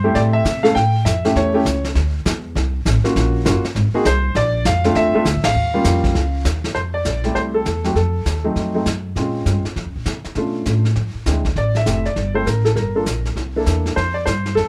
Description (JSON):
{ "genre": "jazz piano trio", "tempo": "200 BPM", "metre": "4/4", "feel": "swing 63% on 8ths", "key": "F major", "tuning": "A4 = 440 Hz", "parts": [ { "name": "warm concert grand piano", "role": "melody", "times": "0.0-14.7 s", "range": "Gb3 to G5", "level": "-21 LUFS", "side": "equal", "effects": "none" }, { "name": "upright bass", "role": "bass", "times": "0.0-14.7 s", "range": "F1 to C3", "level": "-22 LUFS", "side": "equal", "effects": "none" }, { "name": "vintage brush drum kit", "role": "drums", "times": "0.1-14.7 s", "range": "brushed snare drum, hi-hat, kick drum, ride cymbal, snare drum", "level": "-27 LUFS", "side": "equal", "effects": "none" } ], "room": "light reverb", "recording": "none", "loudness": "-19 LUFS", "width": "mono", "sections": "0.0-6.8 A section; 6.8-14.7 B section", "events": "band accent 5.4", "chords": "0.0 Fmaj9 (rootless); 0.8 A7; 2.0 D7sus2; 3.2 Gbmaj7; 3.8 Ab; 4.4 Bbmaj7; 5.6 Eb9; 6.8 Fmaj9; 8.0 F7b9; 9.2 Bbm9; 10.4 Bm7b5; 11.0 Dm9b5; 11.6 Am7; 12.8 Gm; 13.4 C13; 14.0 Fmaj7sus2", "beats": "0.15 0.45 | 0.75 1.05 1.36 1.66 | 1.96 2.26 2.56 2.86 | 3.16 3.46 3.76 4.06 | 4.36 4.66 4.96 5.26 | 5.56 5.86 6.16 6.46 | 6.76 7.06 7.36 7.66 | 7.96 8.26 8.56 8.86 | 9.16 9.46 9.76 10.06 | 10.36 10.66 10.96 11.27 | 11.57 11.87 12.17 12.47 | 12.77 13.07 13.37 13.67 | 13.97 14.27 14.57" }